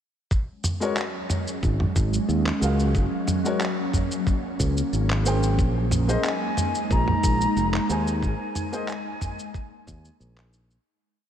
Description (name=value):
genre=sunset chillout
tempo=91 BPM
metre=4/4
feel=straight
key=unclear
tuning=A4 = 442 Hz
part: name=ethereal airy pad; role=sustained chords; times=0.9-10.8 s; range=F#3 to D#4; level=-28 LUFS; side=right 1 dB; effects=ensemble chorus, built-in reverb, phaser
part: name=dusty soul sampler-style drum kit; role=drums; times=0.3-10.8 s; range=handclaps, shaker, toms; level=-30 LUFS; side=equal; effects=studio ambience
part: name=electronic kick drum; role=drums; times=0.3-10.0 s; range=none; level=-24 LUFS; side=equal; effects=studio ambience
part: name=warm grand piano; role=accompaniment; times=0.8-8.9 s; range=G#3 to G#5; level=-31 LUFS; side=left 2 dB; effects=auto-pan, ping-pong delay
part: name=fingered electric bass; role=bass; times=1.6-10.8 s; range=E#1 to D#2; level=-24 LUFS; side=equal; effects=none
part: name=mellow concert flute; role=melody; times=6.3-10.2 s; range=G#5 to A#5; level=-29 LUFS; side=left 1 dB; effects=diffuse ambient delay
room=moderate cathedral reverb, RT60 5.5 s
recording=dreamy mix soaked in reverb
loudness=-22 LUFS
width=side -9 dB against mid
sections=0.3-10.9 groove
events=fade-out 7.3-10.9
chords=0.3 G#9sus4; 5.6 A#9sus4